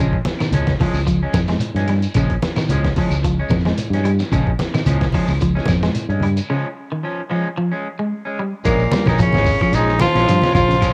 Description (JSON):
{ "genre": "afrobeat", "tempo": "111 BPM", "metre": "4/4", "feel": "swing 54% on 16ths", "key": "Bb dorian", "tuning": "A4 = 440 Hz", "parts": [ { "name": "electric guitar at the edge of break-up", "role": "arpeggios", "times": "0.0-10.7 s", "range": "Db3 to Ab3", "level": "-26 LUFS", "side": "equal", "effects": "none" }, { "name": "electric guitar at the edge of break-up", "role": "stabs", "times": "0.0-10.9 s", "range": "F3 to Db4", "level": "-29 LUFS", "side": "equal", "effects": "none" }, { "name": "fingered electric bass", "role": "bass", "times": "0.0-10.9 s", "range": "Ab1 to G2", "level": "-22 LUFS", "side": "equal", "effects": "none" }, { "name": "boom bap sampler-style drum kit", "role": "drums", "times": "0.1-10.9 s", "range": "hi-hat, kick drum, snare drum", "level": "-25 LUFS", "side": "equal", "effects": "overdrive, cassette tape" }, { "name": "congas", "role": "percussion", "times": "0.2-10.9 s", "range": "none", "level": "-25 LUFS", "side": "equal", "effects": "none" }, { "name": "shekere", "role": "percussion", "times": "0.3-10.9 s", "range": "none", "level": "-31 LUFS", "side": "equal", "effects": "none" }, { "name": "claves", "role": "percussion", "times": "0.4-10.9 s", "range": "none", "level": "-38 LUFS", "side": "equal", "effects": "none" }, { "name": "raspy tenor saxophone", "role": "melody", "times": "8.7-10.9 s", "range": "Bb3 to F4", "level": "-20 LUFS", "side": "equal", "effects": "cassette tape" }, { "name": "clear trombone", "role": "second line", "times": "8.7-10.9 s", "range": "Bb2 to Ab3", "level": "-25 LUFS", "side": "equal", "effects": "none" } ], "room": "light reverb, studio reverb", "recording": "home recording on cassette", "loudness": "-18 LUFS", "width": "mono", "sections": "0.0-8.7 A section; 8.7-10.9 B section", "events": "break 6.5-8.7", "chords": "0.0 Bbm7 (rootless); 8.7 Bbm7", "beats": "0.53 1.07 1.62 | 2.16 2.70 3.24 3.79 | 4.33 4.87 5.41 5.95 | 6.49 7.03 7.57 8.11 | 8.65 9.19 9.73 10.27 | 10.81" }